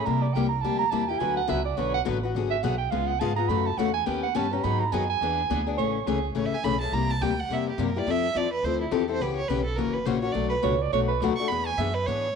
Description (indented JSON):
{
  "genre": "acoustic string swing (jazz manouche)",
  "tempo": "210 BPM",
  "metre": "4/4",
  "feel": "swing 59% on 8ths",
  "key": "A major from 5.8 s",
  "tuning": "A4 = 440 Hz",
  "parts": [
    { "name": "mellow soprano saxophone", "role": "second line", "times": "0.0-6.3, 10.6-11.3 s", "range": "G#4 to B5", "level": "-28 LUFS", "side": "right 11 dB", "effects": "none" },
    { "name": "picked steel-string acoustic guitar", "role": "accompaniment", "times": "0.0-12.3 s", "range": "B2 to B4", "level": "-27 LUFS", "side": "left 9 dB", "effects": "none" },
    { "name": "upright bass", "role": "bass", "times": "0.0-12.3 s", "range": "F#1 to C3", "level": "-31 LUFS", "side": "right 2 dB", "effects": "none" },
    { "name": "warm violin", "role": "melody", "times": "6.4-12.4 s", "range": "E4 to C#6", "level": "-29 LUFS", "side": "right 4 dB", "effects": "none" }
  ],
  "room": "moderate echo chamber reverb, RT60 2.2 s",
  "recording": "1960s-style stereo with parts hard left and right",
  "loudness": "-24 LUFS",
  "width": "side -6 dB against mid",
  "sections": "0.0-5.8 A section; 5.8-12.4 A section",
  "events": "soprano saxophone solo 0.0-5.8; violin solo 5.8-12.4",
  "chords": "0.1 C9; 1.2 D6; 2.4 G#m7b5; 2.9 C#7; 3.5 F#m7; 4.1 D#aug7; 4.6 G#m7; 5.2 E7; 5.8 Amaj7; 6.9 C7; 8.1 Fmaj7; 9.2 C#m7b5; 9.8 F#7; 10.4 Bm7; 11.5 E7"
}